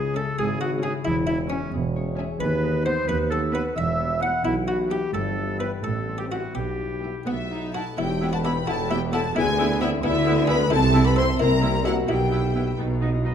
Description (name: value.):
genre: cinematic, playful, whimsical film cue.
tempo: 87 BPM (dotted quarters).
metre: 6/8.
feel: straight.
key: E minor.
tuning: A4 = 438 Hz.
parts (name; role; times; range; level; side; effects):
buff-stop harpsichord; melody; 0.0-12.7 s; B3 to F#5; -33 LUFS; left 1 dB; none.
bright oboe; second line; 0.0-13.3 s; C#4 to F#5; -34 LUFS; right 2 dB; none.
dark clarinet; second line; 0.0-13.3 s; B3 to F#5; -29 LUFS; equal; none.
mellow French horn section; sustained chords; 0.0-12.8 s; E3 to C5; -28 LUFS; left 4 dB; none.
concert harp; arpeggios; 0.0-13.3 s; G2 to B5; -31 LUFS; left 7 dB; none.
rich studio cello section; bass; 0.0-13.3 s; C#2 to D3; -29 LUFS; right 3 dB; none.
warm chamber double bass section; bass; 0.0-13.3 s; E1 to D#2; -29 LUFS; right 4 dB; none.
warm tuba; bass; 0.0-13.3 s; E1 to D#2; -30 LUFS; right 4 dB; none.
clear chamber violin section; melody; 0.2-12.8 s; E5 to C6; -33 LUFS; left 3 dB; none.
rich studio violin section; second line; 0.2-12.8 s; D#5 to C6; -33 LUFS; left 3 dB; none.
rich chamber viola section; accompaniment; 0.2-13.3 s; Bb3 to E4; -32 LUFS; equal; none.
bright concert flute; second line; 7.3-12.8 s; E5 to C6; -34 LUFS; left 2 dB; none.
room: wet recital hall reverb, RT60 1.5 s.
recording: none.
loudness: -21 LUFS.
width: side -8 dB against mid.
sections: 0.0-8.0 A section; 8.0-13.3 B section.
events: none.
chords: 0.0 C#m; 1.1 C#m/E; 2.4 B/D#; 3.8 Em; 5.1 Em/G; 5.8 Am7; 6.6 Em/B; 7.3 B; 8.0 Em; 9.4 E7/D; 10.7 Am/C; 11.4 C7; 12.1 Em/B; 12.8 B.